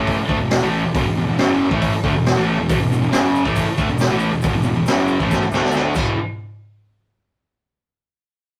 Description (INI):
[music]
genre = garage rock duo or trio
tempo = 137 BPM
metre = 4/4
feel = straight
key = unclear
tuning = A4 = 442 Hz
[part]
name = thick fuzz guitar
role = riff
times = 0.0-6.1 s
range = E2 to D4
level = -21 LUFS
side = equal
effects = distortion
[part]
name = fuzz picked electric bass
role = bass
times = 0.0-6.2 s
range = E1 to D2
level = -28 LUFS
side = equal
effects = overdrive, tube saturation
[part]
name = raw garage drum kit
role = drums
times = 0.1-6.1 s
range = crash cymbal, hi-hat, kick drum, snare drum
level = -23 LUFS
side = equal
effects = none
[part]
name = tube shaker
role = percussion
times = 2.7-6.2 s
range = none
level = -45 LUFS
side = equal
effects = none
[sound]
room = moderate studio reverb, RT60 0.6 s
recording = rough rehearsal-room recording, warm saturation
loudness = -18 LUFS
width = mono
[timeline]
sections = 0.0-6.2 A section; 6.2-7.9 B section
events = drum fill 5.3-6.2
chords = 0.0 E5; 6.2 N.C.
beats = 0.07 0.51 | 0.94 1.38 1.82 2.25 | 2.69 3.13 3.56 4.00 | 4.44 4.87 5.31 5.75